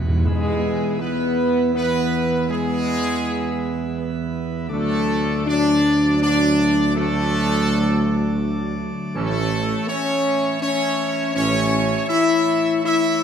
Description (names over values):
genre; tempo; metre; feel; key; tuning
classical, ceremonial fanfare; 81 BPM; 3/4; straight; E major; A4 = 440 Hz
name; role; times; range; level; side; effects
chamber organ, principal chorus; sustained chords; 0.0-13.2 s; E3 to D5; -28 LUFS; equal; none
timpani; percussion; 0.0-1.3 s; E2; -23 LUFS; right 1 dB; none
warm trombone section; sustained chords; 0.2-11.6 s; E3 to D4; -29 LUFS; right 4 dB; none
warm tuba; bass; 0.2-12.0 s; A1 to E2; -24 LUFS; right 4 dB; none
clear trumpet section; melody; 0.3-13.2 s; G#4 to E5; -25 LUFS; right 1 dB; none
mellow French horn section; sustained chords; 0.3-13.2 s; G#3 to E4; -21 LUFS; left 2 dB; none
room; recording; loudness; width
wet concert hall reverb, RT60 1.8 s; none; -18 LUFS; side -8 dB against mid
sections
0.2-13.2 A section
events
timpani fill 0.0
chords
0.2 E; 4.7 D; 9.2 A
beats
| 0.25 1.00 1.74 | 2.49 3.23 3.97 | 4.71 5.48 6.22 | 6.96 7.69 8.42 | 9.16 9.89 10.62 | 11.36 12.10 12.84